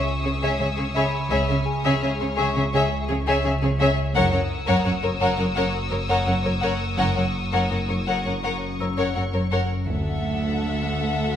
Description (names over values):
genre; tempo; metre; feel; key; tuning
cinematic, suspense film score; 84 BPM; 4/4; straight; unclear; A4 = 438 Hz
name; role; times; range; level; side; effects
warm symphonic violin section; melody; 0.0-11.4 s; C#5 to F#5; -28 LUFS; left 3 dB; none
rich symphonic violin section; second line; 0.0-11.4 s; G#4 to E5; -26 LUFS; left 2 dB; none
analog drone; drone; 0.0-11.4 s; F#1 to D2; -27 LUFS; equal; chorus
large celesta; texture; 0.0-11.4 s; G#4 to E6; -34 LUFS; left 3 dB; none
rich symphonic violin section; texture; 0.0-9.5 s; C#6 to E6; -33 LUFS; left 4 dB; none
clear symphonic cello section; bass; 0.3-11.4 s; D2 to C#3; -26 LUFS; right 2 dB; none
rich symphonic double bass section; bass; 1.3-10.6 s; F#1 to D2; -28 LUFS; right 1 dB; none
room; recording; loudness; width
moderate scoring stage reverb, RT60 1.9 s; minimal, uncompressed stereo recording, vinyl crackle, lossy compression artefacts; -20 LUFS; side -9 dB against mid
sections
0.0-11.4 A section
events
none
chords
0.0 C#m; 4.2 F#; 9.9 Dadd9